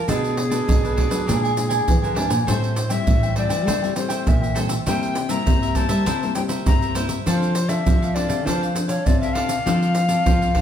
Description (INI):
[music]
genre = samba and choro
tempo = 100 BPM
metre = 4/4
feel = straight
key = F major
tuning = A4 = 440 Hz
[part]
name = breathy tenor recorder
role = melody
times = 0.0-10.6 s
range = Ab4 to Bb5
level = -26 LUFS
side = left 3 dB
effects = none
[part]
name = cavaquinho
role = accompaniment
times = 0.0-10.6 s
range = D4 to Ab5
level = -28 LUFS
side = right 2 dB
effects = none
[part]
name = nylon-string guitar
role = accompaniment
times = 0.0-10.6 s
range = G2 to A4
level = -28 LUFS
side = left 4 dB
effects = none
[part]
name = nylon-string guitar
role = bass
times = 0.1-10.6 s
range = A2 to C4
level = -24 LUFS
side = equal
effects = none
[part]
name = maracas, surdo and pandeiro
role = percussion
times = 0.1-10.6 s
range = none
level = -22 LUFS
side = right 1 dB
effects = none
[sound]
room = wet large studio reverb, RT60 1.1 s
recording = band playing live in one room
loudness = -18 LUFS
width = side -9 dB against mid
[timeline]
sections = 0.0-10.6 A section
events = none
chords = 0.1 Bm7; 1.3 Bb7#11; 2.5 Am7; 4.9 C7; 7.3 F6